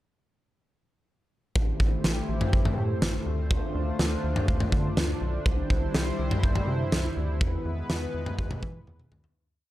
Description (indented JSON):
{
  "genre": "synth-pop",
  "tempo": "123 BPM",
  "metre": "4/4",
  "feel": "straight",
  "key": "A minor",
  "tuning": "A4 = 441 Hz",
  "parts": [
    { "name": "chorused pulse-width pad", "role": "sustained chords", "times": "1.6-9.3 s", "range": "G3 to C5", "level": "-33 LUFS", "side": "left 1 dB", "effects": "none" },
    { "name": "rubbery square bass", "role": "bass", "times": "1.6-9.3 s", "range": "A1 to E3", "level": "-30 LUFS", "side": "equal", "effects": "tube saturation" },
    { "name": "huge arena drum kit", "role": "drums", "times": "1.6-9.4 s", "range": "kick drum, snare drum, toms", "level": "-27 LUFS", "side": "equal", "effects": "none" }
  ],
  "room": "small room ambience",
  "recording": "dry, gritty hardware recording",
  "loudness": "-24 LUFS",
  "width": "side -15 dB against mid",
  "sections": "1.6-9.4 verse",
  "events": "fade-out 7.4-9.4; drum fill 8.9-9.4",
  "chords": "1.6 Am7; 3.3 Dm7; 5.5 Cadd9; 7.4 E"
}